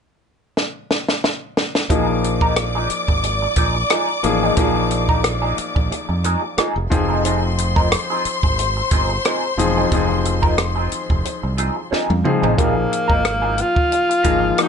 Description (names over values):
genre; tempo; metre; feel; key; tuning
lush 1970s-style soul; 90 BPM; 4/4; swing 54% on 16ths; unclear; A4 = 440 Hz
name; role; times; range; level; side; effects
compact cocktail drum kit; drums; 0.6-14.7 s; hi-hat, kick drum, rim click, snare drum, toms; -20 LUFS; equal; none
warm studio string section; second line; 1.9-11.9 s; C5 to D6; -24 LUFS; left 2 dB; none
warm baby grand piano; accompaniment; 1.9-14.7 s; F3 to Ab4; -23 LUFS; left 4 dB; none
electric guitar through a small old amp; riff; 1.9-14.6 s; F3 to Bb4; -24 LUFS; right 2 dB; wah
modern bright fingered electric bass; bass; 1.9-14.5 s; E1 to F2; -22 LUFS; right 1 dB; none
breathy tenor saxophone; melody; 12.6-14.7 s; Bb3 to F4; -18 LUFS; equal; slapback echo
room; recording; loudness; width
moderate small room reverb, RT60 0.5 s; nothing above 10.5 kHz; -16 LUFS; side -6 dB against mid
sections
0.0-1.9 A section; 1.9-12.6 B section; 12.6-14.7 C section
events
drum fill 0.6-1.9, 11.9-12.6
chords
0.0 N.C.; 1.9 Bb7sus4; 6.9 Fm7; 12.6 Bb7sus4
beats
0.57 1.24 | 1.91 2.58 3.24 3.91 | 4.58 5.25 5.91 6.58 | 7.25 7.92 8.58 9.25 | 9.92 10.58 11.25 11.92 | 12.59 13.25 13.92 14.59